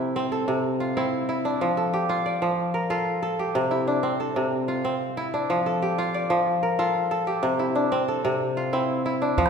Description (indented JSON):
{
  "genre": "west african traditional, West African string and xylophone music",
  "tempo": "124 BPM (dotted quarters)",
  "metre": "12/8",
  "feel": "straight",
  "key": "unclear",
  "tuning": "A4 = 439 Hz",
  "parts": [
    { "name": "kora", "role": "arpeggios", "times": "0.0-9.5 s", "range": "C3 to D5", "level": "-22 LUFS", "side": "equal", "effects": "none" },
    { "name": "calabash", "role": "percussion", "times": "9.4-9.5 s", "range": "none", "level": "-22 LUFS", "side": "right 4 dB", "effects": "none" }
  ],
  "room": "wet recital hall reverb, RT60 1.6 s",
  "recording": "recorded in a church or concert hall",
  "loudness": "-22 LUFS",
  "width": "side -6 dB against mid",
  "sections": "0.0-9.4 A section",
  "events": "none",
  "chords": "0.0 C; 1.6 F; 3.5 C; 5.5 F; 7.4 C"
}